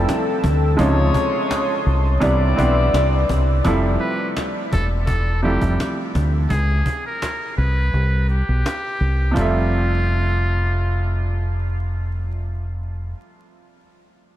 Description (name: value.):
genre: hip hop, boom-bap hip-hop.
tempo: 84 BPM.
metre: 4/4.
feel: swing 54% on 16ths.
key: F lydian.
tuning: A4 = 440 Hz.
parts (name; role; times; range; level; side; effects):
bright upright piano; accompaniment; 0.0-14.4 s; C3 to E5; -23 LUFS; right 2 dB; cassette tape, high-pass filter, low-pass filter.
warm analog pad; sustained chords; 0.0-3.6 s; A4 to E6; -27 LUFS; left 1 dB; chorus, high-pass filter, low-pass filter.
warm horn section; stabs; 0.0-3.3 s; E3 to D5; -26 LUFS; left 4 dB; high-pass filter, low-pass filter, tape echo.
deep dub fingered electric bass; bass; 0.0-13.1 s; E1 to D2; -19 LUFS; equal; none.
cajon; drums; 0.1-9.5 s; none; -28 LUFS; equal; none.
trumpet with metal mute; melody; 4.0-11.5 s; F4 to B4; -27 LUFS; equal; high-pass filter, low-pass filter, tape echo.
room: moderate huge ambient reverb, RT60 6.9 s.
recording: dreamy mix soaked in reverb, vinyl crackle.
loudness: -17 LUFS.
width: side -13 dB against mid.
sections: 0.0-3.6 A section; 3.6-9.4 B section; 9.4-12.2 C section.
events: kick muted 7.9-9.4.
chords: 0.0 Fmaj9; 0.8 Dbmaj9; 2.2 Cmaj9; 3.6 Fmaj9; 6.5 Bbm9; 7.9 C5; 9.4 Fmaj9.